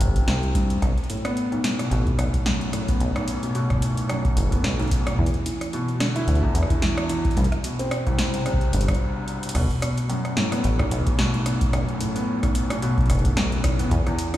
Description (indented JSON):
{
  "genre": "IDM",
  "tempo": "110 BPM",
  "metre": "4/4",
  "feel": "swing 56% on 16ths",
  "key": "unclear",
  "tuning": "A4 = 441 Hz",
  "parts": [
    { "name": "felt-muted upright piano", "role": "arpeggios", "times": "0.0-14.4 s", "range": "B1 to E4", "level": "-24 LUFS", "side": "equal", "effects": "vintage 12-bit sampler grit, tape echo" },
    { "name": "deep acid bass", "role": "bass", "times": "0.0-14.0 s", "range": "F#1 to E2", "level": "-22 LUFS", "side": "equal", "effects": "none" },
    { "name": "electro analog drum machine", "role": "drums", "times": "0.0-14.4 s", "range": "crash cymbal, hi-hat, rim click, snare drum", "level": "-29 LUFS", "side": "equal", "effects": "tape echo" },
    { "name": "electronic kick drum", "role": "drums", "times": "0.1-14.0 s", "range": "none", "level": "-24 LUFS", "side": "equal", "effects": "none" }
  ],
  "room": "digital ambience",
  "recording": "played on a big sound system in a bare room, stone room reverb",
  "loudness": "-20 LUFS",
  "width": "side -14 dB against mid",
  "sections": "0.0-9.6 A section; 9.6-14.4 B section",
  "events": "stop 9.0-9.6; drum fill 9.3",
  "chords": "0.0 C5; 0.8 B5; 5.2 E5; 7.4 C5; 9.6 B5"
}